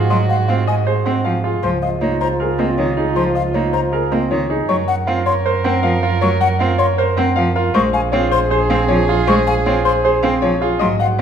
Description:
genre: classical, minimalist pattern music.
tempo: 157 BPM.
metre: 4/4.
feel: straight.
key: unclear.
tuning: A4 = 443 Hz.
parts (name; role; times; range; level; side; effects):
clear grand piano; melody; 0.0-11.2 s; Ab4 to Gb5; -20 LUFS; left 6 dB; none.
clear soprano saxophone; second line; 0.0-11.2 s; F4 to Bb4; -24 LUFS; right 4 dB; none.
bright concert grand piano; arpeggios; 0.0-11.2 s; C4 to C5; -22 LUFS; right 6 dB; none.
rich double bass; bass; 0.0-11.2 s; Bb1 to Ab2; -20 LUFS; right 3 dB; none.
rich cello; accompaniment; 0.1-11.2 s; Eb3 to C4; -22 LUFS; equal; none.
mellow hollow concert flute; arpeggios; 0.1-11.1 s; F5 to Db6; -23 LUFS; left 4 dB; none.
room: wet recital hall reverb, RT60 1.7 s.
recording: minimal, uncompressed stereo recording.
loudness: -14 LUFS.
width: side -8 dB against mid.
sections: 0.0-11.2 A section.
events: none.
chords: 0.0 Ab7; 1.6 Dbmaj9; 4.7 Gbmaj7; 7.7 Bbm7.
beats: | 0.10 0.48 0.87 1.25 | 1.63 2.01 2.40 2.78 | 3.16 3.54 3.92 4.31 | 4.69 5.07 5.45 5.83 | 6.22 6.60 6.98 7.36 | 7.75 8.13 8.51 8.89 | 9.28 9.66 10.04 10.42 | 10.80 11.19.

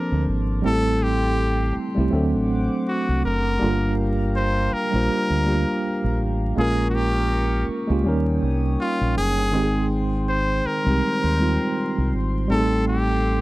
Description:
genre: R&B, neo-soul.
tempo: 81 BPM.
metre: 4/4.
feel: swing 58% on 16ths.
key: unclear.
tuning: A4 = 440 Hz.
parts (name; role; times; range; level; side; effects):
brilliant trumpet; melody; 0.0-13.4 s; F4 to C5; -26 LUFS; left 1 dB; none.
tine electric piano; accompaniment; 0.0-13.4 s; Eb3 to C5; -23 LUFS; right 1 dB; medium stereo tremolo.
chorused pulse-width pad; sustained chords; 0.0-13.4 s; G4 to Eb6; -34 LUFS; left 2 dB; none.
deep dub fingered electric bass; bass; 0.1-13.4 s; F#1 to Eb2; -23 LUFS; equal; none.
room: little or no reverb.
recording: dry, close 1970s-style studio recording, vinyl crackle.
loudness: -19 LUFS.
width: side -18 dB against mid.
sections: 0.0-13.4 A section.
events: none.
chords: 0.0 Bbmaj9; 0.6 Am7; 2.1 D7; 3.6 Gm7; 6.6 Bbm7; 8.0 Eb7; 9.5 Abmaj7; 12.5 Am7b5.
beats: | 0.64 1.38 2.12 2.86 | 3.60 4.34 5.08 5.82 | 6.56 7.30 8.04 8.78 | 9.52 10.27 11.01 11.75 | 12.49 13.23.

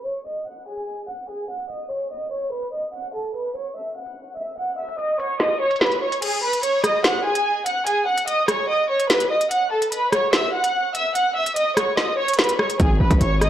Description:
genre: hip hop, drill.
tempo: 146 BPM.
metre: 4/4.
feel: half-time.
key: G# phrygian.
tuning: A4 = 437 Hz.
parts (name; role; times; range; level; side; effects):
warm studio violin section; melody; 0.0-13.5 s; G#4 to F#6; -22 LUFS; right 1 dB; low-pass filter.
drill drum kit; drums; 0.1-13.5 s; crash cymbal, hi-hat, kick drum, rim click, snare drum; -21 LUFS; equal; soft clipping on snare.
distorted 808-style bass; bass; 12.8-13.5 s; G#1; -18 LUFS; equal; distortion.
room: light reverb, digital ambience.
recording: blown-out, overdriven recording, vinyl crackle, overdrive, low-pass filter.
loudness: -19 LUFS.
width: side -11 dB against mid.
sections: 0.0-6.2 A section; 6.2-13.5 B section.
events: filter sweep 0.0-6.2; kick muted 6.2-12.8.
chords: 0.0 G#5; 2.9 F#5; 6.2 G#m; 9.5 F#5; 12.8 G#m.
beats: 0.06 0.47 0.88 | 1.29 1.70 2.11 2.52 | 2.93 3.35 3.76 4.17 | 4.58 4.99 5.40 5.81 | 6.22 6.63 7.04 7.46 | 7.87 8.28 8.69 9.10 | 9.51 9.92 10.33 10.74 | 11.15 11.56 11.97 12.39 | 12.80 13.21.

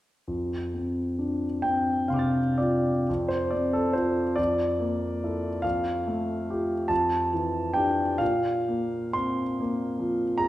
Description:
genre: classical, impressionist solo piano.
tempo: 38-52 BPM (dotted quarters).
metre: 6/8.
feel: rubato.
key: F major.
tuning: A4 = 440 Hz.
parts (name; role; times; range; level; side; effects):
warm concert grand piano; solo; 0.3-10.5 s; F2 to A6; -24 LUFS; equal; none.
room: wet recital hall reverb, RT60 1.4 s.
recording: recorded in a church or concert hall.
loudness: -24 LUFS.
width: side -15 dB against mid.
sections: 0.3-3.1 A section; 3.1-10.5 B section.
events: none.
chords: 0.3 F6; 3.1 F; 4.4 Bbmaj7#11/F; 5.6 Fadd9; 6.9 Dmadd9/F; 8.2 Bbsus2.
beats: | 0.29 1.64 | 3.08 4.38 | 5.64 6.90 | 8.20 9.58.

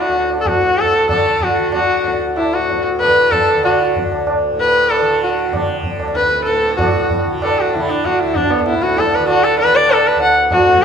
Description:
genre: indian classical, Hindustani.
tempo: 191 BPM.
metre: 4/4.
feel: straight.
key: D raga bhupali.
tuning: A4 = 440 Hz.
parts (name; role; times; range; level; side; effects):
rich sarangi; melody; 0.0-10.8 s; B3 to F#5; -14 LUFS; left 1 dB; none.
hand-pumped harmonium; second line; 0.0-10.8 s; B3 to F#5; -23 LUFS; right 2 dB; none.
tanpura; drone; 0.0-10.8 s; D2 to D3; -24 LUFS; right 1 dB; none.
tabla; percussion; 0.1-10.8 s; none; -20 LUFS; right 2 dB; none.
room: moderate recital hall reverb, RT60 1.8 s.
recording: minimal, uncompressed stereo recording.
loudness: -13 LUFS.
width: side -7 dB against mid.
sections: 0.0-6.8 A section; 6.8-10.8 B section.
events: speeding up 0.0-10.8.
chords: none.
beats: 0.14 | 0.46 0.78 1.10 1.42 | 1.74 2.06 2.38 2.69 | 3.01 3.33 3.64 3.96 | 4.28 4.59 4.91 5.22 | 5.54 5.85 6.16 6.47 | 6.79 7.10 7.41 7.72 | 8.03 8.34 8.65 8.96 | 9.27 9.58 9.89 10.20 | 10.51 10.81.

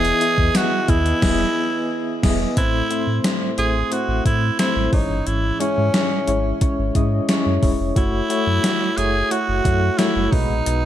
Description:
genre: 1980s-style pop.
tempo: 89 BPM.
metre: 4/4.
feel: straight.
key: unclear.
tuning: A4 = 439 Hz.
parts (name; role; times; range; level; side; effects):
raspy tenor saxophone; melody; 0.0-10.9 s; C#4 to G#4; -22 LUFS; right 2 dB; ping-pong delay.
soft electric-piano-like synth keys; accompaniment; 0.0-10.9 s; G#2 to D#5; -22 LUFS; left 2 dB; chorus, tremolo.
sub bass with octave; bass; 0.0-10.9 s; E1 to A2; -22 LUFS; equal; none.
gated 80s digital drum machine; drums; 0.0-10.8 s; crash cymbal, hi-hat, kick drum, snare drum, tambourine; -21 LUFS; equal; gated reverb, gated reverb snare, overdrive.
room: light reverb.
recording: none.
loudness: -17 LUFS.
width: side -11 dB against mid.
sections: 0.0-2.6 A section; 2.6-10.9 B section.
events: band accent 1.2-2.6.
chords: 0.0 Emaj7; 2.6 Am; 4.9 C#m; 8.0 F#m7; 10.3 B6.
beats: 0.55 1.22 1.90 | 2.57 3.25 3.92 4.59 | 5.27 5.94 6.62 7.29 | 7.96 8.64 9.31 9.99 | 10.66.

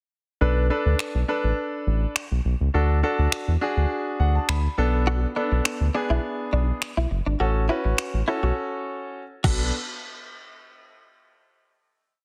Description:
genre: dance-pop.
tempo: 103 BPM.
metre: 4/4.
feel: straight.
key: B dorian.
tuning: A4 = 440 Hz.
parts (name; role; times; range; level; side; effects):
clear concert grand piano; accompaniment; 0.4-9.7 s; B3 to B5; -29 LUFS; equal; sidechain pumping.
round analog bass; bass; 0.4-9.7 s; F#1 to E2; -24 LUFS; equal; sidechain pumping.
detuned 8-bit digital drum machine; drums; 1.0-9.6 s; crash cymbal, finger snaps, kick drum; -29 LUFS; equal; soft clipping on snare.
direct-recorded clean electric guitar; riff; 5.1-9.6 s; D4 to F#4; -32 LUFS; equal; ensemble chorus.
room: light reverb, digital ambience.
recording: dense, heavily limited modern master.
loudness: -24 LUFS.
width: mono.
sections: 0.4-9.7 verse; 9.7-12.1 final hit.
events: grand piano fill 3.9-5.1; break 8.6-9.7.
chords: 0.4 Bm7; 2.7 D; 4.8 Bm7; 7.4 A6; 9.4 Bm7; 9.7 N.C..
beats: | 0.41 0.99 1.58 2.16 | 2.74 3.32 3.91 4.49 | 5.07 5.66 6.24 6.82 | 7.40 7.99 8.57 9.15.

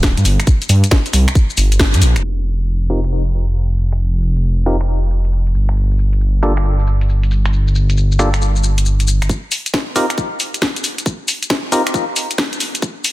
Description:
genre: UK garage, two-step garage.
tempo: 136 BPM.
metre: 4/4.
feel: swing 66% on 16ths.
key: unclear.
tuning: A4 = 439 Hz.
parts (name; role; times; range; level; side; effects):
dark detuned saw bass; bass; 0.0-9.3 s; D1 to G2; -14 LUFS; equal; none.
electronic kick drum; drums; 0.0-1.9, 9.3-12.9 s; none; -15 LUFS; equal; high-pass filter on kick, small room ambience.
garage drum kit; drums; 0.0-13.1 s; finger snaps, hi-hat, shaker, snare drum; -19 LUFS; left 1 dB; soft clipping on snare, small room ambience.
percussive organ stab; stabs; 2.9-11.8 s; Bb3 to Bb4; -21 LUFS; equal; chorus, ping-pong delay.
room: little or no reverb.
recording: dense, heavily limited modern master, high-pass filter, low-pass filter.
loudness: -14 LUFS.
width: side -17 dB against mid.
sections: 0.0-2.2 A section; 2.2-9.3 B section; 9.3-13.1 C section.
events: band accent 1.8; filter sweep 2.2-9.3, 9.3-13.1; build-up 9.3-13.1.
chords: 0.0 N.C.; 2.2 F7sus4; 5.5 N.C.; 9.3 F7sus4; 12.6 N.C..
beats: 0.03 | 0.47 0.91 1.35 1.79 | 2.24 2.68 3.12 3.56 | 4.00 4.44 4.88 5.32 | 5.76 6.21 6.65 7.09 | 7.53 7.97 8.41 8.85 | 9.29 9.74 10.18 10.62 | 11.06 11.50 11.94 12.38 | 12.82.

